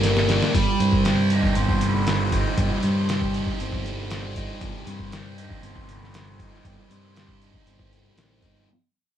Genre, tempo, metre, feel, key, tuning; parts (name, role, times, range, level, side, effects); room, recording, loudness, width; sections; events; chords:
psychedelic rock; 118 BPM; 4/4; straight; A4 = 440 Hz
thick fuzz guitar; riff; 0.0-8.7 s; G3 to G4; -25 LUFS; right 1 dB; distortion, phaser
fuzz fingered electric bass; bass; 0.0-8.7 s; G1 to G2; -25 LUFS; right 1 dB; overdrive
trip hop sampler-style drum kit; drums; 0.0-8.5 s; hi-hat, kick drum, snare drum; -26 LUFS; equal
moderate studio ambience, RT60 0.5 s; band playing live in one room; -20 LUFS; side -10 dB against mid
0.0-8.7 A section
fade-out 0.0-8.7; drum fill 0.0-0.6
0.0 Gm; 0.6 Cm/G